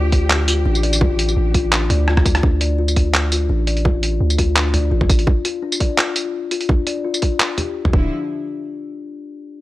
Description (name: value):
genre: half-time drum and bass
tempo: 169 BPM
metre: 4/4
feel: swing 53% on 16ths, half-time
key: D minor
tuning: A4 = 440 Hz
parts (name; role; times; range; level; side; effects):
- clear studio cello section; sustained chords; 0.0-2.4, 7.9-8.1 s; D3 to G4; -30 LUFS; equal; sidechain pumping
- kalimba; arpeggios; 0.0-8.1 s; D4 to D5; -24 LUFS; left 6 dB; vintage 12-bit sampler grit, low-pass filter, analog delay
- long sustained 808-style bass; bass; 0.0-5.3, 7.9-8.1 s; D1 to D2; -18 LUFS; equal; none
- boom bap sampler-style drum kit; drums; 0.1-7.9 s; handclaps, hi-hat, rim click, tambourine, toms; -19 LUFS; right 1 dB; none
- electronic kick drum; drums; 0.1-8.0 s; none; -17 LUFS; equal; none
room: little or no reverb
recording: dry, gritty hardware recording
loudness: -15 LUFS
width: side -16 dB against mid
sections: 0.0-2.4 A section; 2.4-8.1 B section; 8.1-9.5 C section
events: drop 0.0-2.4; drum fill 2.1-2.4; filter sweep on kalimba 2.4-8.1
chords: 0.0 Dm; 7.9 Dmadd9; 8.1 N.C.